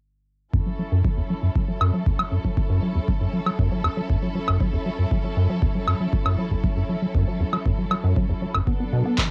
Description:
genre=acid house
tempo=118 BPM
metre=4/4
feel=straight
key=F# minor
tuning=A4 = 440 Hz
part: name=dark studio string section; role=sustained chords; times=0.5-9.3 s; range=F#3 to A4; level=-34 LUFS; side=equal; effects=sidechain pumping, cassette tape
part: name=deep acid bass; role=riff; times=0.5-9.3 s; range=E2 to B3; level=-25 LUFS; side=equal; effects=sidechain pumping, cassette tape
part: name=electronic kick drum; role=drums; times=0.5-9.3 s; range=none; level=-27 LUFS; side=equal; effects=cassette tape
part: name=electronic woodblock and handclaps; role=drums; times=1.8-9.3 s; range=none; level=-27 LUFS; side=equal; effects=cassette tape
room=light reverb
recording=home recording on cassette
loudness=-23 LUFS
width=mono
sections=0.5-9.3 A section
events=filter sweep on acid bass 0.5-9.3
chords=0.5 F#m7; 8.7 Bm7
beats=| 0.54 1.04 1.55 2.06 | 2.57 3.08 3.59 4.10 | 4.61 5.11 5.62 6.13 | 6.64 7.15 7.66 8.16 | 8.67 9.18

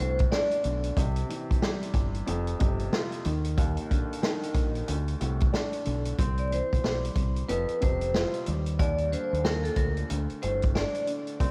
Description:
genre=hip hop, boom-bap hip-hop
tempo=92 BPM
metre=4/4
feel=swing 60% on 16ths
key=unclear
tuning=A4 = 435 Hz
part: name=vibraphone with hard mallets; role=melody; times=0.0-0.6, 6.4-11.0 s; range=A4 to D5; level=-33 LUFS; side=equal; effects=high-pass filter, low-pass filter, cassette tape, tape echo
part: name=dark upright piano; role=accompaniment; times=0.0-11.5 s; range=D2 to F4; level=-36 LUFS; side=equal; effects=high-pass filter, low-pass filter, cassette tape
part: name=deep dub fingered electric bass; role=bass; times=0.0-11.5 s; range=F1 to Eb2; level=-32 LUFS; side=equal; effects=none
part: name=vintage drum kit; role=drums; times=0.2-11.5 s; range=hi-hat, kick drum, snare drum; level=-31 LUFS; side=equal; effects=cassette tape
room=small room ambience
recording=home recording on cassette, vinyl crackle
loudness=-28 LUFS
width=mono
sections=0.0-6.2 A section; 6.2-11.5 B section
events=none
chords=0.0 Bm7; 1.0 C; 2.3 Fsus2; 3.3 Eb5; 4.9 Bm7; 6.2 Cmaj7; 7.5 F5; 8.5 Ebmaj7; 10.1 Gsus2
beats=0.32 | 0.97 1.62 2.27 2.92 | 3.58 4.23 4.88 5.53 | 6.19 6.84 7.49 8.14 | 8.79 9.45 10.10 10.75 | 11.40

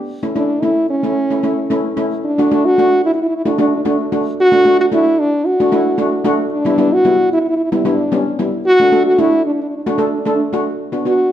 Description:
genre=calypso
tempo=112 BPM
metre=4/4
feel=straight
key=D major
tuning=A4 = 438 Hz
part: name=steel pan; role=accompaniment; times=0.0-11.2 s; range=G3 to A4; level=-17 LUFS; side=equal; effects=none
part: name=mellow French horn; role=melody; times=0.4-11.3 s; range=C#4 to F#4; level=-14 LUFS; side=equal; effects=none
room=wet recital hall reverb, RT60 1.4 s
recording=close, detailed microphones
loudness=-12 LUFS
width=side -11 dB against mid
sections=0.0-2.2 A section; 2.2-10.8 B section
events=none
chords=0.1 A; 2.2 D; 6.5 Em7; 8.7 D; 10.8 Bm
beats=| 0.10 0.64 1.17 1.71 | 2.25 2.78 3.32 3.85 | 4.39 4.92 5.46 5.99 | 6.52 7.06 7.59 8.12 | 8.65 9.19 9.72 10.25 | 10.79

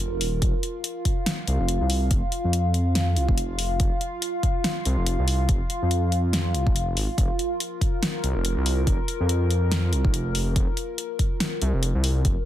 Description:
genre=deep dubstep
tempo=142 BPM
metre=4/4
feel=swing 57% on 16ths, half-time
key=unclear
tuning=A4 = 440 Hz
part: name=dark analog pad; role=sustained chords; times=0.0-12.5 s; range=F4 to F5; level=-30 LUFS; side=left 1 dB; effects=chorus, phaser
part: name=dark detuned saw bass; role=bass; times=0.0-12.4 s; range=Eb1 to F2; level=-23 LUFS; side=equal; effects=none
part: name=deep house drum kit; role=drums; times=0.0-12.3 s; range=hi-hat, snare drum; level=-28 LUFS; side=left 1 dB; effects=none
part: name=electronic kick drum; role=drums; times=0.4-12.3 s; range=none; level=-24 LUFS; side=equal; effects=none
room=digital ambience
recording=dense, heavily limited modern master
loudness=-22 LUFS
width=side -12 dB against mid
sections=0.0-12.5 A section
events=none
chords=0.0 F5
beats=0.00 | 0.42 0.84 1.26 1.69 | 2.11 2.53 2.95 3.38 | 3.80 4.22 4.64 5.07 | 5.49 5.91 6.33 6.76 | 7.18 7.60 8.02 8.45 | 8.87 9.29 9.71 10.14 | 10.56 10.98 11.40 11.83 | 12.25

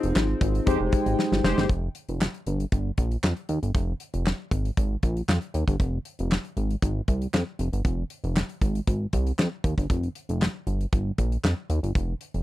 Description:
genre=early-eighties boogie funk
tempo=117 BPM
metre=4/4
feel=straight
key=F minor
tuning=A4 = 439 Hz
part: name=mellow tine electric piano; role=accompaniment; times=0.0-1.7 s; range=Eb4 to C5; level=-27 LUFS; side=left 3 dB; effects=medium stereo tremolo
part: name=chorused pulse-width pad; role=sustained chords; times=0.0-1.7 s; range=F3 to G5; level=-32 LUFS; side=right 2 dB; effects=none
part: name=chorused synth bass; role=bass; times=0.0-12.4 s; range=F1 to F2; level=-26 LUFS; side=equal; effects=none
part: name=modern studio drum kit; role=drums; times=0.0-12.4 s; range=handclaps, hi-hat, kick drum, snare drum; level=-25 LUFS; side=equal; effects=none
part: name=analog synth brass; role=second line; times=0.7-1.7 s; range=Ab3 to C5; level=-28 LUFS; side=right 1 dB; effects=chorus
room=little or no reverb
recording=dry, close 1970s-style studio recording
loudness=-24 LUFS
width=side -16 dB against mid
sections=0.0-1.7 A section; 1.7-12.4 B section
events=drum fill 1.2-1.7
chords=0.0 Fm9; 1.7 Fsus4; 3.7 Bb5/F; 5.8 Fm; 7.6 Fmadd9; 9.9 Fsus4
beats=0.16 0.67 1.18 | 1.70 2.21 2.72 3.23 | 3.75 4.26 4.77 5.29 | 5.80 6.31 6.82 7.34 | 7.85 8.36 8.88 9.39 | 9.90 10.41 10.93 11.44 | 11.95

